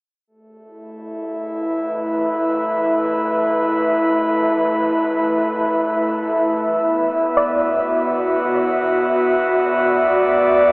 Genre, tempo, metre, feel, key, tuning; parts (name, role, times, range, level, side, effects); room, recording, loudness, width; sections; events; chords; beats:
ambient; free time; A4 = 437 Hz
airy breathy pad; sustained chords; 0.3-10.7 s; A3 to E5; -16 LUFS; equal; chorus, shimmer reverb
soft round pluck; arpeggios; 7.4-9.9 s; D5; -24 LUFS; equal; analog chorus, diffuse ambient delay, shimmer reverb
wet huge ambient reverb, RT60 7.6 s; in a vast, echoing space, telephone sound; -16 LUFS; side -34 dB against mid
0.3-10.7 A section
filter sweep on analog synth pad 0.3-10.7
0.3 Asus2; 6.7 Bm
free time